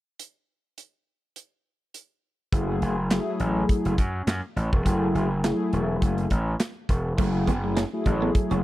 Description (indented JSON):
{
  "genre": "early-eighties boogie funk",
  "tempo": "103 BPM",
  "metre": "4/4",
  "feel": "swing 56% on 16ths",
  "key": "F# minor",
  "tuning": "A4 = 441 Hz",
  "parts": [
    { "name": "modern studio drum kit", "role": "drums", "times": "0.2-8.6 s", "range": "crash cymbal, handclaps, hi-hat, kick drum, snare drum", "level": "-25 LUFS", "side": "equal", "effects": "none" },
    { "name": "mellow synth brass", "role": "accompaniment", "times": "2.5-8.6 s", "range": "F#3 to G#4", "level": "-26 LUFS", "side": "left 1 dB", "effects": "chorus" },
    { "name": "gritty slap bass", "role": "bass", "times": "2.5-8.6 s", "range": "E1 to F#2", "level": "-26 LUFS", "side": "equal", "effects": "overdrive" },
    { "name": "clean electric guitar", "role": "riff", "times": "7.2-8.6 s", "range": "A3 to C#4", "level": "-32 LUFS", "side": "right 5 dB", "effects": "wide subtle chorus" }
  ],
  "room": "small room ambience",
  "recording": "dry, close 1970s-style studio recording",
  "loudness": "-22 LUFS",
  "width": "side -16 dB against mid",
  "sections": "0.2-2.5 A section; 2.5-7.2 B section; 7.2-8.6 C section",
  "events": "none",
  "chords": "0.2 N.C.; 2.5 F#m9"
}